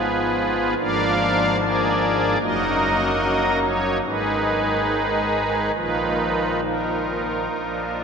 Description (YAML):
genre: classical, chorale-style piece for pipe organ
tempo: 67-76 BPM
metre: 4/4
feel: rubato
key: unclear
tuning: A4 = 440 Hz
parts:
  - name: pipe organ, strings celeste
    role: solo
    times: 0.0-8.0 s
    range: Gb1 to F5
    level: -19 LUFS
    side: equal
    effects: none
room: wet cathedral reverb, RT60 6.1 s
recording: none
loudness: -19 LUFS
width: side -6 dB against mid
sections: 0.0-8.0 A section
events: none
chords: 0.0 Fdim/Ab; 0.8 Bb7/Ab; 2.4 Ebm/Gb; 4.0 Abm; 5.8 Bbsus4; 7.5 Bb